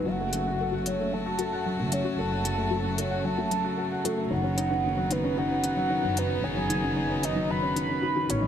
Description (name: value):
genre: piano and strings electronica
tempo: 113 BPM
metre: 4/4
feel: straight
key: unclear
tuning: A4 = 441 Hz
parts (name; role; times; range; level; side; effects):
- warm velvety synth lead; melody; 0.0-8.5 s; A4 to B5; -30 LUFS; right 1 dB; chorus, tremolo
- warm string quartet; sustained chords; 0.0-8.5 s; C#3 to F#4; -34 LUFS; right 1 dB; none
- felt-muted upright piano; riff; 0.0-8.5 s; D#3 to F#5; -30 LUFS; left 2 dB; none
- warm studio double bass section; bass; 0.0-8.5 s; F#1 to A1; -33 LUFS; right 1 dB; none
- soft round pluck; arpeggios; 0.1-8.5 s; D#4 to F#5; -38 LUFS; left 3 dB; none
- electronic hi-hat; drums; 0.3-8.4 s; none; -32 LUFS; left 2 dB; overdrive, low-pass filter on hats
room: light reverb, small room reverb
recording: none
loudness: -25 LUFS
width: side -9 dB against mid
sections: 0.1-8.5 A section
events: build-up 0.1-8.5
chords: 0.1 F#m; 4.3 Badd9/F#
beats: | 0.06 0.59 1.13 1.66 | 2.19 2.72 3.25 3.78 | 4.31 4.84 5.37 5.91 | 6.43 6.97 7.50 8.03